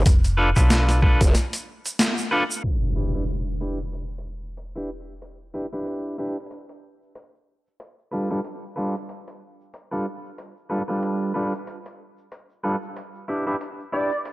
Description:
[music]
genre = glitch hop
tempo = 93 BPM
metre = 4/4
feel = swing 57% on 16ths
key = E phrygian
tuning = A4 = 441 Hz
[part]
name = growl bass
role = bass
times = 0.0-1.3 s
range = F1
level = -20 LUFS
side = equal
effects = chorus, tube saturation
[part]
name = slap-like FM bass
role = bass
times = 0.1-1.2 s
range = F1 to B1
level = -20 LUFS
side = equal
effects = tube saturation
[part]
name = boom bap sampler-style drum kit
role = drums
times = 0.1-14.3 s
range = hi-hat, snare drum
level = -25 LUFS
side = equal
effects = overdrive
[part]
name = electronic kick drum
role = drums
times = 0.1-1.3 s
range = none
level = -17 LUFS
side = equal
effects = overdrive
[part]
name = egg shaker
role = percussion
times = 0.1-14.3 s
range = none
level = -33 LUFS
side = right 2 dB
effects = none
[part]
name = clean electric guitar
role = stabs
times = 0.4-14.1 s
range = G3 to B4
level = -26 LUFS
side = equal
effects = sidechain pumping, tape echo
[part]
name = impact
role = sound effects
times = 2.6-5.2 s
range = none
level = -28 LUFS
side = equal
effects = none
[part]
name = sync lead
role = melody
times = 13.9-14.2 s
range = D5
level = -25 LUFS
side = right 1 dB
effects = analog chorus
[sound]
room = light reverb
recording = dry, gritty hardware recording, low-pass filter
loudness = -22 LUFS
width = side -20 dB against mid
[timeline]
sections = 0.0-2.6 A section; 2.6-14.3 B section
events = break 1.3-2.6; band accent 2.0-2.3; impact 2.6-5.2; filter sweep 2.6-14.3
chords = 0.0 G7 (rootless); 2.6 Em7; 7.8 G7; 13.0 Em7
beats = | 0.06 0.70 1.35 2.00 | 2.64 3.29 3.93 4.58 | 5.22 5.87 6.51 7.16 | 7.80 8.45 9.09 9.74 | 10.38 11.03 11.67 12.32 | 12.96 13.61 14.25

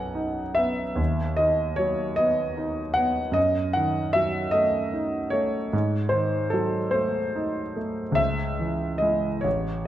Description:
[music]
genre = classical, romantic nocturne for solo piano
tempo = 50 BPM (dotted quarters)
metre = 6/8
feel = uneven beats, rubato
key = C# minor from 3.4 s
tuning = A4 = 442 Hz
[part]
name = clear grand piano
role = solo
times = 0.0-9.9 s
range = A1 to A#5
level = -22 LUFS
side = equal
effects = none
[sound]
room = moderate recital hall reverb, RT60 1.4 s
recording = dark, warm production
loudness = -22 LUFS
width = side -12 dB against mid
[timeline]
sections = 0.0-9.9 A section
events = none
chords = 0.0 B; 1.0 B/D#; 3.4 D#dim/F#; 5.7 G#7b9; 8.2 C#m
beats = | 0.98 2.18 | 3.36 4.55 | 5.73 6.94 | 8.19 9.45

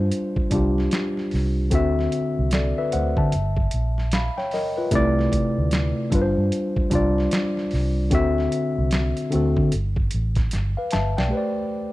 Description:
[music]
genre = R&B, neo-soul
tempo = 75 BPM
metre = 4/4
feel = swing 62% on 16ths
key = unclear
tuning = A4 = 438 Hz
[part]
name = tine electric piano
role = accompaniment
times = 0.0-11.9 s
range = C3 to B5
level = -22 LUFS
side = left 1 dB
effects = none
[part]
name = vintage muted fingered electric bass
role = bass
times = 0.0-11.3 s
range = G1 to D3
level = -23 LUFS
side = equal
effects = none
[part]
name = boom bap sampler-style drum kit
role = drums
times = 0.1-11.3 s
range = hi-hat, kick drum, snare drum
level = -26 LUFS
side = equal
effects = none
[sound]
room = little or no reverb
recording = dry, close 1970s-style studio recording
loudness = -20 LUFS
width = side -17 dB against mid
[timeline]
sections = 0.0-11.3 A section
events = drum fill 10.5-11.3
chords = 0.0 G7sus4; 1.7 D9; 3.3 G7alt; 4.9 C69; 6.1 G7sus4; 8.1 D9; 9.7 Gadd9; 11.3 Am11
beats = 0.12 0.92 | 1.72 2.52 3.32 4.12 | 4.92 5.72 6.52 7.32 | 8.12 8.92 9.72 10.52 | 11.32

